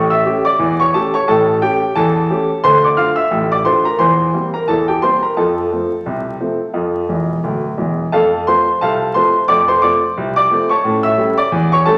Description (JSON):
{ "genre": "ragtime piano", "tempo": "88 BPM", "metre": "2/4", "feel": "swing 57% on 16ths", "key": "F major", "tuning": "A4 = 440 Hz", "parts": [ { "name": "clear baby grand piano", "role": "solo", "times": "0.0-12.0 s", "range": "D1 to F6", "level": "-15 LUFS", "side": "equal", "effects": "none" } ], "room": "wet large studio reverb, RT60 1.5 s", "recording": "vinyl crackle", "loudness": "-15 LUFS", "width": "mono", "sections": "0.0-8.1 A section; 8.1-12.0 A section", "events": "grand piano fill 7.1-8.1", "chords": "0.0 A7; 2.6 Dm; 4.0 C7/E; 5.4 F; 10.8 A7", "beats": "0.61 | 1.29 1.97 | 2.65 3.33 | 4.01 4.69 | 5.37 6.06 | 6.74 7.43 | 8.12 8.80 | 9.48 10.16 | 10.84 11.52" }